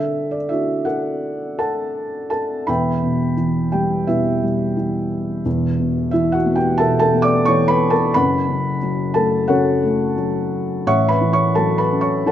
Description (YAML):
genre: classical, lyrical solo piano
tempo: 87 BPM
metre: 4/4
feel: rubato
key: E dorian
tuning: A4 = 440 Hz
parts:
  - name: felt-muted upright piano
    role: solo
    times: 0.0-12.3 s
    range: E1 to D6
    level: -16 LUFS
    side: equal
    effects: none
room: moderate scoring stage reverb, RT60 1.9 s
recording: none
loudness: -16 LUFS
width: side -10 dB against mid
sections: 0.0-2.7 A section; 2.7-12.3 B section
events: none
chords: 0.0 Dadd9; 2.7 Em; 5.5 Asus2/E; 8.1 F#m; 10.9 A6